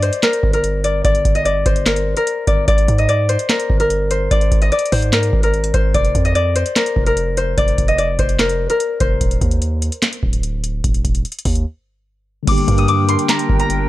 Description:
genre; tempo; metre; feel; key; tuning
hip hop, trap; 147 BPM; 4/4; half-time; G phrygian; A4 = 440 Hz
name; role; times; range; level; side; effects
concert harp; melody; 0.0-13.9 s; Bb4 to Eb6; -18 LUFS; left 2 dB; analog delay
long sustained 808-style bass; bass; 0.0-13.9 s; D1 to Ab2; -19 LUFS; equal; none
booming analog drum machine; drums; 0.0-13.8 s; crash cymbal, handclaps, hi-hat, kick drum, snare drum; -18 LUFS; equal; none
mellow tine electric piano; accompaniment; 12.4-13.9 s; D3 to G4; -20 LUFS; equal; medium stereo tremolo
hollow soft pad; sustained chords; 12.5-13.9 s; D4 to G5; -25 LUFS; left 2 dB; chorus
room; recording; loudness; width
little or no reverb; dry, gritty hardware recording; -14 LUFS; side -16 dB against mid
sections
0.0-12.5 A section; 12.5-13.9 B section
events
break 9.2-12.5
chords
0.0 Gmadd11; 2.7 Abmaj9#11; 5.9 C9sus4/F; 9.2 N.C.; 12.5 Gm

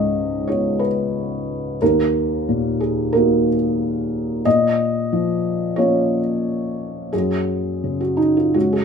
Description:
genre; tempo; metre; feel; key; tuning
neoclassical minimalist piano; 90 BPM; 4/4; rubato; Eb minor; A4 = 439 Hz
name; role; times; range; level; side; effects
felt-muted upright piano; solo; 0.0-8.8 s; Db2 to Eb5; -17 LUFS; equal; none
room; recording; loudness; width
moderate studio reverb, RT60 0.6 s; minimal, uncompressed stereo recording; -17 LUFS; side -6 dB against mid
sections
0.0-8.8 A section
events
none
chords
0.0 Db7; 1.8 Ebm; 4.4 Bbm; 7.1 Gbsus2

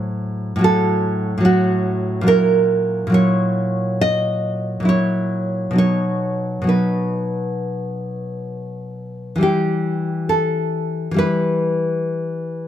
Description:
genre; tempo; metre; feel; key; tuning
romantic piece for solo classical guitar; 65-72 BPM; 4/4; rubato; unclear; A4 = 437 Hz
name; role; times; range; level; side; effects
nylon-string guitar; solo; 0.0-12.7 s; A2 to D#5; -17 LUFS; equal; none
room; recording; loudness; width
moderate recital hall reverb, RT60 1.3 s; close, detailed microphones; -17 LUFS; side -10 dB against mid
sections
0.0-12.7 A section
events
none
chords
0.0 F#dim/A; 2.3 F#7/A#; 5.8 B; 9.4 Em

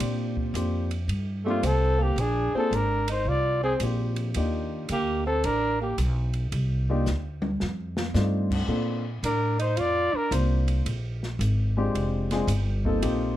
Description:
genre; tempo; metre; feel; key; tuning
jazz, small-group swing and bop; 111 BPM; 4/4; swing 67% on 8ths; Bb major; A4 = 438 Hz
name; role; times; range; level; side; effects
warm baby grand piano; accompaniment; 0.0-13.4 s; Bb2 to C5; -29 LUFS; left 2 dB; none
upright bass; bass; 0.0-13.4 s; F1 to Bb2; -26 LUFS; equal; none
open jazz drum kit; drums; 0.0-13.2 s; crash cymbal, hi-hat, kick drum, ride cymbal, snare drum, toms; -36 LUFS; equal; none
breathy alto saxophone; second line; 1.4-6.0, 9.2-10.3 s; A3 to F4; -29 LUFS; right 4 dB; none
warm flugelhorn; melody; 1.5-6.0, 9.2-10.3 s; F4 to D5; -27 LUFS; left 2 dB; none
room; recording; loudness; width
light reverb; none; -24 LUFS; side -13 dB against mid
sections
0.0-13.4 A section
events
drum fill 7.1-8.1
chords
0.0 Bb69; 2.2 Bb7; 4.4 Ebmaj9; 6.5 Cm11; 7.6 F13; 8.7 Bbmaj9; 10.9 Bb13

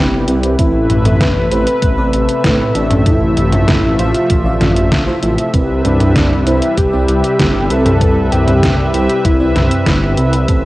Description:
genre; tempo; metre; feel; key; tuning
synthwave; 97 BPM; 4/4; straight; C major; A4 = 440 Hz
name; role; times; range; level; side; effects
wide unison lead; melody; 0.0-10.2 s; C4 to B4; -18 LUFS; equal; cassette tape, tape echo
warm analog pad; sustained chords; 0.0-10.7 s; C3 to E5; -19 LUFS; left 1 dB; chorus, tremolo, vintage 12-bit sampler grit, sidechain pumping, cassette tape
FM electric piano with soft pad layer; stabs; 0.0-10.6 s; C4 to E5; -22 LUFS; right 2 dB; chorus, cassette tape
wide detuned saw bass; bass; 0.0-10.7 s; G1 to A2; -16 LUFS; equal; chorus, sidechain pumping
detuned 8-bit digital drum machine; drums; 0.3-10.6 s; hi-hat, snare drum, toms; -16 LUFS; equal; cassette tape
electronic kick drum; drums; 0.6-10.6 s; none; -17 LUFS; equal; cassette tape
room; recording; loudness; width
light reverb, digital ambience; home recording on cassette; -11 LUFS; side -18 dB against mid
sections
0.0-10.7 A section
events
none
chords
0.0 Cmaj7; 0.6 Amadd9; 3.1 Fmaj7/A; 5.5 Cmaj7

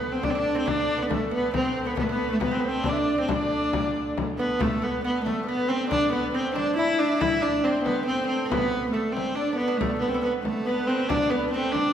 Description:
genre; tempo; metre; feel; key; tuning
medieval dance; 138 BPM; 3/4; straight; unclear; A4 = 440 Hz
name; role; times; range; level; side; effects
warm viola da gamba; melody; 0.0-11.9 s; A3 to E4; -24 LUFS; equal; none
bright reedy bass recorder; second line; 0.0-11.9 s; A4 to E5; -32 LUFS; left 3 dB; none
lute; second line; 0.0-11.9 s; A3 to E4; -33 LUFS; right 4 dB; none
dark hurdy-gurdy; drone; 0.0-11.9 s; D3 to A3; -36 LUFS; right 1 dB; none
frame drum; percussion; 0.0-11.9 s; none; -32 LUFS; left 3 dB; none
room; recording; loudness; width
wet recital hall reverb, RT60 1.4 s; recorded in a church or concert hall; -23 LUFS; side -9 dB against mid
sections
0.0-4.6 A section; 4.6-11.9 B section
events
none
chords
none

